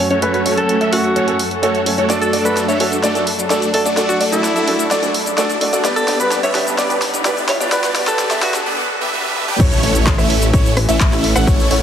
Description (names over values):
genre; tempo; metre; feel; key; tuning
EDM, festival progressive house; 128 BPM; 4/4; straight; A major; A4 = 440 Hz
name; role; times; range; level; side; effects
breathy alto saxophone; melody; 0.0-8.7 s; E4 to C#5; -22 LUFS; equal; digital delay
felt-muted upright piano; accompaniment; 0.0-8.7 s; G2 to E5; -22 LUFS; right 3 dB; sidechain pumping, digital delay
muted studio string section; sustained chords; 0.0-11.8 s; F#2 to B4; -26 LUFS; left 2 dB; sidechain pumping
dark concert grand piano; arpeggios; 0.1-11.8 s; C#5 to F#5; -23 LUFS; left 1 dB; sidechain pumping, low-pass filter, digital delay
supersaw chords; riff; 0.1-11.8 s; A3 to G5; -20 LUFS; right 1 dB; phaser, sidechain pumping, low-pass filter, digital delay
big-room dance drum kit; drums; 0.1-11.8 s; crash cymbal, handclaps, hi-hat, rim click, shaker, snare drum, toms; -22 LUFS; equal; overdrive, high-pass filter on hats, high-pass filter on snare, high-pass filter on perc, high-pass filter on toms, high-pass filter on cymbals
riser and impact; sound effects; 3.9-11.5 s; none; -28 LUFS; equal; none
wide detuned saw bass; bass; 9.6-11.8 s; A1; -18 LUFS; left 1 dB; chorus, sidechain pumping
electronic kick drum; drums; 9.6-11.6 s; none; -15 LUFS; equal; overdrive
room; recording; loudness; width
moderate huge ambient reverb, RT60 6.3 s; heavily compressed radio sound, multiband compression, high-pass filter; -14 LUFS; side -9 dB against mid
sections
0.0-9.6 A section; 9.6-11.8 B section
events
build-up 0.0-9.6; filter sweep on supersaw synth 0.0-9.6; filter sweep 0.0-9.6; drum fill 2.1-8.7, 9.4; riser 3.9-8.7; break 8.7-9.6; drop 9.6-11.8; impact 9.6-11.5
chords
0.0 F#m; 2.1 D/F#; 5.8 G; 9.6 A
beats
| 0.22 0.69 1.16 1.63 | 2.10 2.57 3.04 3.50 | 3.97 4.44 4.91 5.38 | 5.85 6.32 6.79 7.25 | 7.72 8.19 8.66 9.13 | 9.60 10.07 10.54 11.00 | 11.47